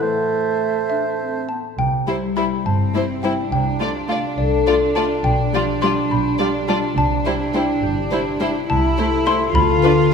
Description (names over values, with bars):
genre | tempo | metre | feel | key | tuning
cinematic, playful, whimsical film cue | 70 BPM (dotted quarters) | 6/8 | straight | C major | A4 = 440 Hz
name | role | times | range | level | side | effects
mellow clarinet | second line | 0.0-1.6 s | A3 to D4 | -31 LUFS | equal | none
silver concert flute | second line | 0.0-1.5 s | E5 | -31 LUFS | left 2 dB | none
warm oboe | second line | 0.0-1.5 s | C5 | -29 LUFS | right 2 dB | none
mellow bassoon | accompaniment | 0.0-1.5 s | A3 | -23 LUFS | right 10 dB | none
concert harp | arpeggios | 0.0-10.1 s | A2 to E5 | -23 LUFS | left 5 dB | none
xylophone with soft rubber mallets | melody | 0.9-10.1 s | D5 to C6 | -24 LUFS | left 4 dB | none
warm studio double bass section | bass | 1.8-10.1 s | G1 to D2 | -23 LUFS | right 2 dB | none
warm studio violin section | melody | 2.1-9.9 s | B4 to D5 | -28 LUFS | left 3 dB | none
warm studio violin section | second line | 2.1-9.9 s | E4 to F4 | -27 LUFS | left 2 dB | none
dark studio viola section | accompaniment | 2.1-9.9 s | G3 to D4 | -27 LUFS | right 2 dB | none
warm studio cello section | bass | 2.7-10.1 s | C4 to F4 | -23 LUFS | right 3 dB | none
room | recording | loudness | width
wet scoring stage reverb, RT60 1.9 s | minimal, uncompressed stereo recording | -17 LUFS | side -6 dB against mid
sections
0.0-1.8 A section; 1.8-10.1 B section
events
none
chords
0.0 Am; 1.8 C; 3.5 Dm7/C; 5.3 G7/B; 7.0 C; 8.7 Am/C; 9.6 Bdim/D